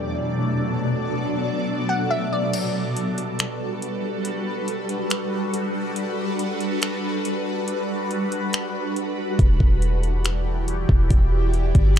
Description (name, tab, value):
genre	hip hop, atmospheric cloud-rap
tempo	140 BPM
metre	4/4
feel	half-time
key	G major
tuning	A4 = 440 Hz
part	shimmering ambient pad	sustained chords	0.0-12.0 s	B2 to D5	-24 LUFS	equal	chorus, built-in reverb, phaser, sidechain pumping, low-pass filter
part	mellow electric guitar	arpeggios	0.0-2.5 s	A3 to D5	-32 LUFS	right 3 dB	ensemble chorus, low-pass filter, tape echo
part	glassy wavetable pluck	melody	1.9-2.5 s	D5 to F#5	-28 LUFS	left 2 dB	chorus, low-pass filter, tape echo
part	smooth R&B drum kit	drums	2.5-12.0 s	crash cymbal, finger snaps, hi-hat, kick drum	-21 LUFS	equal	none
part	warm 808-style bass	bass	9.4-12.0 s	E1 to G1	-20 LUFS	equal	none
room	digital ambience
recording	dark, warm production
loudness	-21 LUFS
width	side -10 dB against mid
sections	0.0-2.5 A section; 2.5-12.0 B section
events	filter sweep 0.0-2.5; break 2.5-9.4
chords	0.0 Bm7; 2.5 Gmaj7; 9.4 Em7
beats	0.39 | 0.82 1.25 1.68 2.10 | 2.53 2.96 3.39 3.82 | 4.25 4.68 5.11 5.53 | 5.96 6.39 6.82 7.25 | 7.68 8.11 8.53 8.96 | 9.39 9.82 10.25 10.68 | 11.11 11.53 11.96